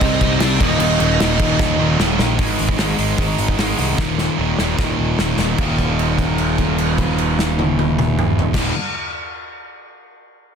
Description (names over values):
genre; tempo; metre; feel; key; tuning
punk rock; 150 BPM; 4/4; straight; Eb major; A4 = 440 Hz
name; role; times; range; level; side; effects
crunchy overdriven guitar; melody; 0.0-2.0 s; D4 to Eb5; -22 LUFS; right 2 dB; none
distorted electric guitar; riff; 0.0-8.7 s; Eb2 to C4; -22 LUFS; right 15 dB; overdrive
sludgy distorted guitar; riff; 0.0-8.7 s; Eb2 to C4; -23 LUFS; left 12 dB; overdrive
sludgy distorted guitar; riff; 0.0-2.2 s; Eb2 to G4; -22 LUFS; right 1 dB; overdrive
fuzz picked electric bass; bass; 0.0-8.7 s; Eb1 to C2; -21 LUFS; equal; overdrive
loose indie drum kit; drums; 0.0-8.6 s; crash cymbal, hi-hat, kick drum, snare drum, toms; -20 LUFS; equal; none
room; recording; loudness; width
little or no reverb; dense, heavily limited modern master; -15 LUFS; side -7 dB against mid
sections
0.0-2.4 A section; 2.4-5.6 B section; 5.6-8.8 C section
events
drum fill 1.6-2.4, 4.0-5.6; held note 5.6-8.5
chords
0.0 Cm; 0.6 Eb; 2.4 Ab5; 4.0 Eb5